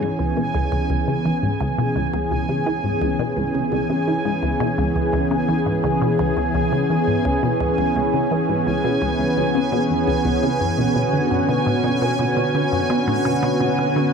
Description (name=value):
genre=ambient, sequencer-driven space music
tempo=85 BPM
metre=4/4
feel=straight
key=C# phrygian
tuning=A4 = 439 Hz
part: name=lush unison pad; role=sustained chords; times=0.0-14.1 s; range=D3 to G#4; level=-20 LUFS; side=equal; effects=chorus
part: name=resonant blip pluck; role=riff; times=0.0-14.0 s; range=C#2 to E3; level=-23 LUFS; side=left 1 dB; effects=chorus, phaser, ping-pong delay
part: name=bubbling stepped-filter texture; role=texture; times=0.0-14.1 s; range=G#5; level=-26 LUFS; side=right 4 dB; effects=chorus, built-in reverb
room=wet huge ambient reverb, RT60 8.0 s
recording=none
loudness=-18 LUFS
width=side -6 dB against mid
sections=0.0-14.1 A section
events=none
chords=0.0 C#m7; 10.8 Bmadd9